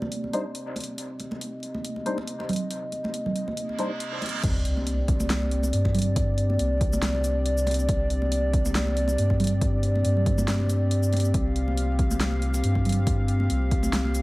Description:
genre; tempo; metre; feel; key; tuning
deep dubstep; 139 BPM; 4/4; swing 55% on 16ths, half-time; C minor; A4 = 440 Hz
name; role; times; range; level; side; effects
dark analog pad; sustained chords; 0.0-14.2 s; C4 to F5; -29 LUFS; equal; chorus, vintage 12-bit sampler grit
congas; percussion; 0.0-14.1 s; none; -32 LUFS; right 2 dB; none
deep house drum kit; drums; 0.1-14.2 s; crash cymbal, hi-hat, shaker, snare drum; -32 LUFS; equal; none
percussive organ stab; stabs; 0.3-3.9 s; G3 to C5; -33 LUFS; left 1 dB; ensemble chorus, dub echo
reverse cymbal and sub drop; sound effects; 3.8-6.2 s; none; -34 LUFS; right 1 dB; none
soft dub sub bass; bass; 4.4-14.2 s; C2 to G2; -25 LUFS; equal; none
electronic kick drum; drums; 4.4-13.8 s; none; -27 LUFS; equal; none
room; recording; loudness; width
light reverb; vinyl crackle; -23 LUFS; side -20 dB against mid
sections
0.0-4.4 A section; 4.4-14.2 B section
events
filter sweep on analog synth pad 0.0-4.4; reverse cymbal 3.8-4.4; drop 4.4-14.2; impact 4.4-6.2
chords
0.0 Cmadd9; 4.4 Csus2

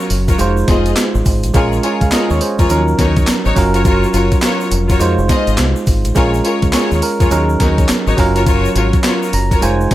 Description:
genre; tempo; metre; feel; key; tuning
R&B, new jack swing; 104 BPM; 4/4; swing 63% on 16ths; unclear; A4 = 440 Hz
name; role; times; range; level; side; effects
bell-like tine electric piano; accompaniment; 0.0-9.9 s; F3 to Bb5; -17 LUFS; right 3 dB; none
clear studio string section; stabs; 0.0-9.9 s; Eb4 to Eb5; -19 LUFS; left 3 dB; none
tube shaker; percussion; 0.0-9.9 s; none; -34 LUFS; left 5 dB; none
deep dub fingered electric bass; bass; 0.1-9.9 s; F1 to F2; -16 LUFS; equal; none
crisp 8-bit digital drum machine; drums; 0.1-9.9 s; handclaps, hi-hat, kick drum, snare drum, tambourine; -16 LUFS; equal; gated reverb
room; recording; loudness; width
digital ambience; none; -11 LUFS; side -14 dB against mid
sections
0.0-9.9 A section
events
tine electric piano fill 9.0-9.9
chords
0.4 Fm7; 1.5 Bbm7; 2.7 Ebm7; 3.6 Gbmaj7; 5.0 Fm7; 6.2 Bbm7; 7.3 Ebm7; 8.2 Gbmaj7

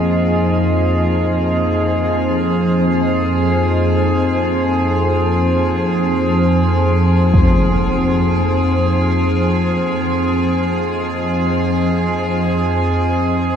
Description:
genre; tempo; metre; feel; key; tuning
dark ambient drone; free time; none; none; unclear; A4 = 442 Hz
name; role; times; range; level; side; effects
dark analog pad; sustained chords; 0.0-13.6 s; F3 to Eb5; -22 LUFS; left 1 dB; chorus, shimmer reverb
organ-like drone; drone; 0.0-13.6 s; F2 to F3; -16 LUFS; equal; ensemble chorus, built-in reverb
metallic inharmonic drone; texture; 0.0-13.6 s; Ab4; -23 LUFS; right 2 dB; chorus, built-in reverb, shimmer reverb
impact; percussion; 7.3-7.5 s; none; -18 LUFS; equal; low-pass filter on sfx
room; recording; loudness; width
wet huge ambient reverb, RT60 7.6 s; dark, warm production; -14 LUFS; side -8 dB against mid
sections
0.0-13.6 A section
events
fade-out on analog synth pad 0.0-13.6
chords
0.0 Fm

